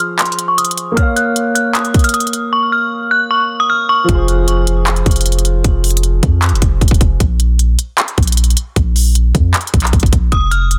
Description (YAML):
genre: hip hop, trap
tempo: 154 BPM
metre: 4/4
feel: half-time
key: unclear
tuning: A4 = 441 Hz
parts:
  - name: metallic FM bell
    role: melody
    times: 0.0-4.1, 10.3-10.7 s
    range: C6 to Gb6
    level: -18 LUFS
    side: equal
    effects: chorus, low-pass filter, digital delay
  - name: dark grand piano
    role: accompaniment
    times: 0.0-7.2 s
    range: F3 to F5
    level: -23 LUFS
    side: equal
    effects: low-pass filter
  - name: trap drum kit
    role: drums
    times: 0.0-10.8 s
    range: handclaps, hi-hat, kick drum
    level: -16 LUFS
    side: equal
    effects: none
  - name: warm 808-style bass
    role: bass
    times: 4.1-10.8 s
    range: F1 to F2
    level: -16 LUFS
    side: equal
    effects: none
room: digital ambience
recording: dense, heavily limited modern master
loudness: -14 LUFS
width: mono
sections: 0.0-4.1 A section; 4.1-10.8 B section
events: filter sweep 0.0-4.1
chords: 0.0 Fm; 1.0 Bbm; 4.1 Fm; 7.2 Bb5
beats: 0.19 0.58 | 0.97 1.36 1.75 2.14 | 2.53 2.92 3.31 3.70 | 4.09 4.48 4.87 5.26 | 5.64 6.04 6.42 6.81 | 7.20 7.59 7.98 8.37 | 8.76 9.15 9.54 9.93 | 10.32 10.71